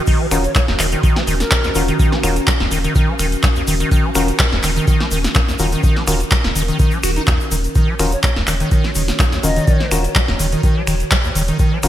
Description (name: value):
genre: acid house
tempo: 125 BPM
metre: 4/4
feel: swing 54% on 16ths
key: Eb minor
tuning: A4 = 440 Hz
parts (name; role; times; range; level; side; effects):
- warbly tape-like pad; sustained chords; 0.0-11.9 s; Eb3 to Db5; -26 LUFS; right 1 dB; chorus, built-in reverb, sidechain pumping
- acid bass, square; riff; 0.0-11.9 s; Eb2 to Gb4; -21 LUFS; equal; overdrive, ensemble chorus
- electro analog drum machine; drums; 0.1-11.9 s; crash cymbal, finger snaps, handclaps, hi-hat, snare drum; -21 LUFS; equal; gated reverb
- electronic kick drum; drums; 0.1-11.7 s; none; -16 LUFS; equal; none
- tube shaker; percussion; 0.1-11.9 s; none; -29 LUFS; left 4 dB; none
- percussive organ stab; stabs; 0.3-11.9 s; Db4 to Bb4; -25 LUFS; left 3 dB; chorus, cassette tape, ping-pong delay
- saturated sub bass; bass; 0.3-11.9 s; Eb1; -21 LUFS; equal; sidechain pumping
- hollow concert flute; melody; 0.4-1.8, 8.1-9.9 s; Bb4 to Eb5; -27 LUFS; left 1 dB; ping-pong delay
room: light reverb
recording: bright 1980s-style digital production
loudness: -14 LUFS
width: side -12 dB against mid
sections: 0.0-11.9 A section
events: none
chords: 0.0 Ebm7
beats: | 0.07 0.56 1.03 1.51 | 2.00 2.48 2.96 3.44 | 3.92 4.39 4.88 5.36 | 5.83 6.32 6.79 7.28 | 7.75 8.23 8.71 9.20 | 9.68 10.15 10.63 11.12 | 11.60